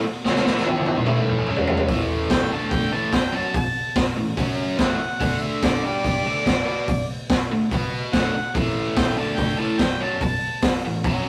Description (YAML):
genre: garage rock duo or trio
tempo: 144 BPM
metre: 4/4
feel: straight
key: A major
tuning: A4 = 440 Hz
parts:
  - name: biting overdriven guitar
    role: riff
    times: 0.0-11.3 s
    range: A2 to B4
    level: -27 LUFS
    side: equal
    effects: none
  - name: raw garage drum kit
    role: drums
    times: 0.2-11.1 s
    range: hi-hat, kick drum, snare drum, toms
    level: -24 LUFS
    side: equal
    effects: none
  - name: clear harmonica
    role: melody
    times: 2.3-10.6 s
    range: D5 to A5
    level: -29 LUFS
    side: equal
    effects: overdrive
room: moderate studio reverb, RT60 0.6 s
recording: rough rehearsal-room recording, warm saturation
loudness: -22 LUFS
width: mono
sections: 0.0-1.9 A section; 1.9-11.3 B section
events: drum fill 0.2-1.9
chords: 0.4 E5; 1.1 A5; 1.5 C#5; 1.9 A5; 2.5 D5; 2.9 A; 4.4 F#5; 4.8 A5; 5.2 D5; 5.8 G5; 6.3 D5; 7.7 B5; 8.1 D5; 8.5 A5; 9.2 D5; 9.6 A